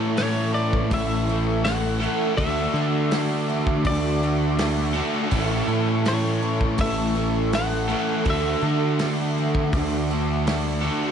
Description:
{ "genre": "rock, shoegaze and dream pop", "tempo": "82 BPM", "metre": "4/4", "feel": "straight", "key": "A major", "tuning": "A4 = 445 Hz", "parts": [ { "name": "brassy analog pad", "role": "sustained chords", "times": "0.0-11.1 s", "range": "F#4 to D6", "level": "-32 LUFS", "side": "equal", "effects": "chorus" }, { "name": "picked twelve-string acoustic guitar", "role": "arpeggios", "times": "0.0-11.1 s", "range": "E3 to A4", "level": "-33 LUFS", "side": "right 7 dB", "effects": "none" }, { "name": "crunchy overdriven guitar", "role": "riff", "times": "0.0-11.1 s", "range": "A2 to A4", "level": "-30 LUFS", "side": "right 1 dB", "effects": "none" }, { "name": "overdriven electric guitar", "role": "riff", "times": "0.0-11.1 s", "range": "A2 to A4", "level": "-29 LUFS", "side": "right 11 dB", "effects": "reverse reverb" }, { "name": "thick fuzz guitar", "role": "riff", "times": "0.0-11.1 s", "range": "A2 to D4", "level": "-29 LUFS", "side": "left 11 dB", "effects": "distortion, analog chorus" }, { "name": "growling picked electric bass", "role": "bass", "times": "0.0-10.9 s", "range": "A1 to D3", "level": "-25 LUFS", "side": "equal", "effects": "overdrive" }, { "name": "twelve-string electric guitar", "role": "melody", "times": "0.2-10.5 s", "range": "C#5 to F#5", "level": "-30 LUFS", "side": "left 2 dB", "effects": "tape echo" }, { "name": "loose indie drum kit", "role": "drums", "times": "0.2-10.6 s", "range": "hi-hat, kick drum, snare drum", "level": "-29 LUFS", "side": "equal", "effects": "none" } ], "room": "light reverb, studio reverb", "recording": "nothing above 10.8 kHz", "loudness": "-20 LUFS", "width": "side -8 dB against mid", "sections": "0.0-11.1 A section", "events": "none", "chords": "0.0 A; 2.4 Dadd9; 5.3 A; 8.3 Dadd9" }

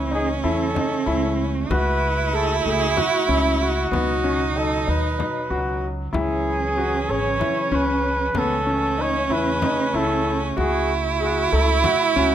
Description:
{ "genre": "contemporary instrumental, chamber music in an uneven meter", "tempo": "190 BPM (eighths)", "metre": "7/8", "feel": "straight", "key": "C# minor", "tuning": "A4 = 439 Hz", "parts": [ { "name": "warm flugelhorn", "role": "melody", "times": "0.0-12.3 s", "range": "E4 to C#5", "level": "-25 LUFS", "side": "equal", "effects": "none" }, { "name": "rich cello", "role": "second line", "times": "0.0-12.3 s", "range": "C#4 to E4", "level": "-24 LUFS", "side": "right 6 dB", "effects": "none" }, { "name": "mellow woodwind section", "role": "sustained chords", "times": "0.0-12.3 s", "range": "B2 to F#4", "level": "-32 LUFS", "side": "left 2 dB", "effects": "none" }, { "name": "upright bass", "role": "bass", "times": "0.0-12.3 s", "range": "G#1 to E2", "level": "-26 LUFS", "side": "equal", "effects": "none" }, { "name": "clear grand piano", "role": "arpeggios", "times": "0.1-12.3 s", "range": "A3 to A4", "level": "-26 LUFS", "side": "left 4 dB", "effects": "none" }, { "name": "frame drum", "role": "percussion", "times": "0.8-12.1 s", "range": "none", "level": "-29 LUFS", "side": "left 4 dB", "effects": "none" } ], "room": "light reverb", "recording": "close, detailed microphones", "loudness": "-19 LUFS", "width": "side -10 dB against mid", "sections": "0.0-12.3 A section", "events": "none", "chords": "0.0 A/C#; 1.7 F#m/C#; 3.9 C#9sus4; 6.1 C#m; 8.4 A/C#; 10.6 F#m/C#" }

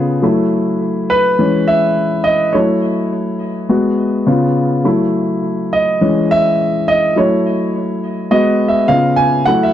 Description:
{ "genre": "soul", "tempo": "104 BPM", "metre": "4/4", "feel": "straight", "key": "F# dorian", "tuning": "A4 = 442 Hz", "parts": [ { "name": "warm concert grand piano", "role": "solo", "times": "0.0-9.7 s", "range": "C#3 to G#5", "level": "-12 LUFS", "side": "equal", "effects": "tape echo" } ], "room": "light reverb", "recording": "dry, close 1970s-style studio recording", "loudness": "-12 LUFS", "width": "side -11 dB against mid", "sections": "0.0-9.7 A section", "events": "grand piano solo 0.0-9.7", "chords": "0.2 F#m7; 1.4 E6; 2.5 F#m7; 3.7 G#m7; 4.3 C#7; 4.9 F#m7; 6.0 E6; 7.2 F#m7; 8.3 G#m7; 8.9 C#7" }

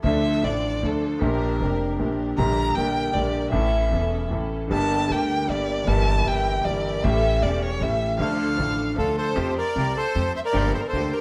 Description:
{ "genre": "tango", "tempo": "154 BPM", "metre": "3/4", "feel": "rubato", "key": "D harmonic minor", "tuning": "A4 = 441 Hz", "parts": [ { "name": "warm violin", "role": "second line", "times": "0.0-11.2 s", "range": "A4 to Bb5", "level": "-29 LUFS", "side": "equal", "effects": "none" }, { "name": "bright concert grand piano", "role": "accompaniment", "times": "0.0-11.1 s", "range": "E1 to A4", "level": "-28 LUFS", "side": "equal", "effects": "none" }, { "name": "warm symphonic string section", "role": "stabs", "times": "0.0-11.1 s", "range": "A3 to Bb4", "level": "-36 LUFS", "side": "equal", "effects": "none" }, { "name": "upright bass", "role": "bass", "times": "0.0-11.1 s", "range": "E1 to F2", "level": "-28 LUFS", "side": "equal", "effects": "none" }, { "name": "bandoneon", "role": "melody", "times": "9.0-11.2 s", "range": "F4 to E5", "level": "-28 LUFS", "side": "equal", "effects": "none" } ], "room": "wet studio reverb, RT60 0.8 s", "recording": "heard from further back in the room", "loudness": "-23 LUFS", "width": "mono", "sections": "0.0-9.4 A section; 9.4-11.2 B section", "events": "violin solo 0.0-9.4", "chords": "0.0 Dm; 1.2 Bb6; 2.4 Gm/Bb; 3.5 A; 4.7 Gm; 5.9 Edim/G; 7.0 A7; 8.2 Dm; 9.4 Fadd9; 10.5 Gm7" }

